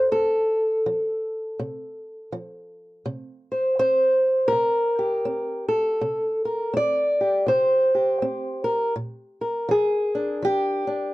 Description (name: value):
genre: acoustic country blues, solo or duo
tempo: 82 BPM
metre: 4/4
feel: swing 61% on 8ths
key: unclear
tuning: A4 = 441 Hz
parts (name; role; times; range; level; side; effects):
- fingerpicked old ladder-braced acoustic guitar; solo; 0.0-11.1 s; F2 to D5; -21 LUFS; equal; none
room: little or no reverb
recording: dry, close 1970s-style studio recording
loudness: -20 LUFS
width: side -18 dB against mid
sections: 0.0-11.1 A section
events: none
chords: 0.0 F; 3.1 C5; 8.9 Bb7